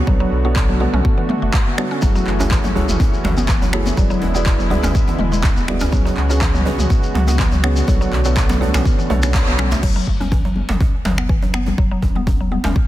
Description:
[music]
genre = afro house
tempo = 123 BPM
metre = 4/4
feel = swing 54% on 16ths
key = F# minor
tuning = A4 = 441 Hz
[part]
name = warm analog pad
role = sustained chords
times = 0.0-9.8 s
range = C#3 to F#4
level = -26 LUFS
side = equal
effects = chorus, tremolo, sidechain pumping
[part]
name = felt-muted upright piano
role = stabs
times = 0.0-9.8 s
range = A3 to D5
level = -25 LUFS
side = right 4 dB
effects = sidechain pumping, ping-pong delay
[part]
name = mallet-like synth pluck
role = arpeggios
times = 0.1-12.7 s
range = E3 to C#4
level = -24 LUFS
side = left 1 dB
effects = chorus, sidechain pumping, ping-pong delay
[part]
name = warm sub bass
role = bass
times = 0.1-12.7 s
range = E1 to C#2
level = -20 LUFS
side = equal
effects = tube saturation, sidechain pumping
[part]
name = electronic kick drum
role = drums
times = 0.1-12.9 s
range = none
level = -17 LUFS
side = equal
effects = none
[part]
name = congas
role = percussion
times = 0.1-12.6 s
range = none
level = -28 LUFS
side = left 5 dB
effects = none
[part]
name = deep house drum kit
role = drums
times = 0.6-12.7 s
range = crash cymbal, finger snaps, handclaps, toms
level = -25 LUFS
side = right 1 dB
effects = overdrive
[part]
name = djembe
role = percussion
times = 2.0-12.7 s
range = none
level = -26 LUFS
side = right 1 dB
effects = none
[part]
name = shekere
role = percussion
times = 2.0-9.8 s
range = none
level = -32 LUFS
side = left 3 dB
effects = none
[sound]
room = light reverb, small room ambience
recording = dense, heavily limited modern master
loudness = -14 LUFS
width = side -14 dB against mid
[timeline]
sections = 0.0-9.8 A section; 9.8-12.9 B section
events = drop 0.0-9.8; band accent 9.3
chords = 0.1 Bm7; 2.0 F#m7; 4.0 E7; 5.9 C#7sus4; 7.9 Bm7; 9.8 F#5; 11.8 E5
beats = | 0.07 0.56 1.05 1.54 | 2.02 2.51 3.00 3.49 | 3.98 4.46 4.95 5.44 | 5.93 6.42 6.90 7.39 | 7.88 8.37 8.86 9.34 | 9.83 10.32 10.81 11.29 | 11.78 12.27 12.76

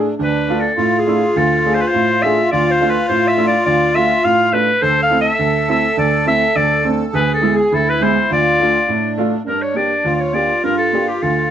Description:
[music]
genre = klezmer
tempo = 104 BPM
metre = 2/4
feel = straight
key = D dorian sharp4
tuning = A4 = 441 Hz
[part]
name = accordion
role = second line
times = 0.0-11.5 s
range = D4 to A4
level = -19 LUFS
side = equal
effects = light tremolo tuning, slapback echo
[part]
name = clear upright piano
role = accompaniment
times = 0.0-11.5 s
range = D2 to G#4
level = -18 LUFS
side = right 2 dB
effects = none
[part]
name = bright clarinet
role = melody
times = 0.2-11.5 s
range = G4 to F5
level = -16 LUFS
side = left 1 dB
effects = none
[sound]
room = moderate studio reverb, RT60 0.6 s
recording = none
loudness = -13 LUFS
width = side -9 dB against mid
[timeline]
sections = 0.2-9.5 A section; 9.5-11.5 B section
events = none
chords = 0.2 Dm; 4.8 Am/D; 7.1 E/D; 8.3 Dm; 9.5 Gm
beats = | 0.18 0.76 | 1.34 1.92 | 2.50 3.08 | 3.66 4.24 | 4.82 5.40 | 5.98 6.56 | 7.14 7.72 | 8.30 8.88 | 9.46 10.04 | 10.63 11.21

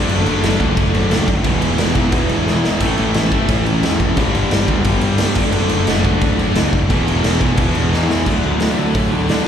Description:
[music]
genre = punk rock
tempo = 176 BPM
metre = 4/4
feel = straight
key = unclear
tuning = A4 = 441 Hz
[part]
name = distorted electric guitar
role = riff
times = 0.0-9.5 s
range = E2 to D4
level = -22 LUFS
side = right 10 dB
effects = distortion
[part]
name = fuzz guitar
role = riff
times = 0.0-9.5 s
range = A2 to A4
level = -21 LUFS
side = left 2 dB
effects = distortion, slapback echo
[part]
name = tight distorted guitar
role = riff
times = 0.0-9.5 s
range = E2 to D4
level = -22 LUFS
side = left 11 dB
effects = distortion, slapback echo
[part]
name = growling picked electric bass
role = bass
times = 0.0-9.5 s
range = E1 to D3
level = -20 LUFS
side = equal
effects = overdrive
[part]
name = raw garage drum kit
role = drums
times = 0.1-9.4 s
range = crash cymbal, hi-hat, kick drum, snare drum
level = -18 LUFS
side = equal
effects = none
[sound]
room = light reverb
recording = live gig heard through the venue's PA, recital hall reverb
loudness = -14 LUFS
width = side -8 dB against mid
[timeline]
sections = 0.0-8.3 A section; 8.3-9.5 B section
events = drum fill 2.5-2.8, 7.9-8.3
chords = 0.0 D/F#; 1.4 E; 2.8 A; 4.2 G; 5.4 D/F#; 6.9 E; 8.3 D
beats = | 0.09 0.43 0.77 1.11 | 1.45 1.79 2.13 2.47 | 2.81 3.15 3.49 3.83 | 4.17 4.51 4.86 5.20 | 5.54 5.88 6.22 6.56 | 6.90 7.24 7.58 7.92 | 8.26 8.61 8.95 9.29

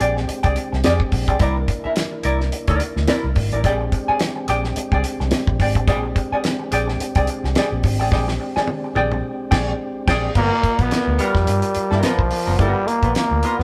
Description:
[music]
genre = funk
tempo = 107 BPM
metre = 4/4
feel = swing 56% on 16ths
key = unclear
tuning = A4 = 440 Hz
[part]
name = archtop guitar, miked and amplified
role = accompaniment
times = 0.0-13.6 s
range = B3 to Ab5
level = -25 LUFS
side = equal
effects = wah
[part]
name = mellow tonewheel organ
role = sustained chords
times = 0.0-13.6 s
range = Ab3 to D5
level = -31 LUFS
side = equal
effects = overdrive, fast rotary speaker
[part]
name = vintage muted fingered electric bass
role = bass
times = 0.0-13.6 s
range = F#1 to G2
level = -25 LUFS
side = equal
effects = none
[part]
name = damped 70s drum kit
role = drums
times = 0.0-13.6 s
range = crash cymbal, hi-hat, kick drum, snare drum, toms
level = -24 LUFS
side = equal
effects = none
[part]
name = growling trombone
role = melody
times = 10.4-13.6 s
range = F3 to B3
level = -22 LUFS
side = equal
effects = none
[sound]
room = moderate stone room reverb, RT60 1.4 s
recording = band playing live in one room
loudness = -20 LUFS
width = mono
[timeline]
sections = 0.0-10.4 A section; 10.4-13.6 B section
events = drum fill 8.1-10.4; band accent 9.2-10.4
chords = 0.0 Bb13; 1.4 C9; 3.6 Bb13; 10.4 G7#9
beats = 0.28 0.84 | 1.40 1.96 2.52 3.08 | 3.64 4.20 4.76 5.32 | 5.88 6.44 7.00 7.56 | 8.12 8.68 9.23 9.79 | 10.35 10.91 11.47 12.03 | 12.59 13.15

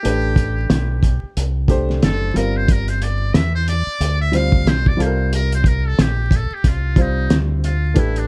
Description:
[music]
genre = hip hop, jazz-hop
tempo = 91 BPM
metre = 4/4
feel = swing 58% on 16ths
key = unclear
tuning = A4 = 440 Hz
[part]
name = trumpet with metal mute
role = melody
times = 0.0-8.3 s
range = D4 to F5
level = -28 LUFS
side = equal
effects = none
[part]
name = dark grand piano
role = accompaniment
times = 0.0-8.3 s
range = G3 to C5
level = -26 LUFS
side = equal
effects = plate reverb
[part]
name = cloth-damped thuddy drum kit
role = drums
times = 0.0-8.3 s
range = hi-hat, kick drum, snare drum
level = -20 LUFS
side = equal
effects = none
[part]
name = deep dub fingered electric bass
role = bass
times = 0.1-8.3 s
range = F#1 to E2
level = -22 LUFS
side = equal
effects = none
[sound]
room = little or no reverb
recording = dark, warm production, vinyl crackle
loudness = -18 LUFS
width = mono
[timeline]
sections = 0.0-8.3 A section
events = muted trumpet solo 0.0-8.3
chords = 0.0 Am11; 2.4 Gm7; 5.0 C9sus4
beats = | 0.05 0.71 1.37 2.03 | 2.69 3.35 4.01 4.67 | 5.33 5.99 6.64 7.30 | 7.96

